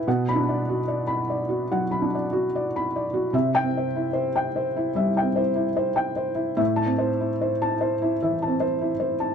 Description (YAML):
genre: neoclassical minimalist piano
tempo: 74 BPM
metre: 4/4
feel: rubato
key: unclear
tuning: A4 = 440 Hz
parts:
  - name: felt-muted upright piano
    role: solo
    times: 0.0-9.3 s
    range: A2 to B5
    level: -22 LUFS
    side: equal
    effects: none
room: light reverb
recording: dark, warm production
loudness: -22 LUFS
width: side -7 dB against mid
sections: 0.0-9.3 A section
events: none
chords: 0.1 Bm; 3.3 C; 6.6 Am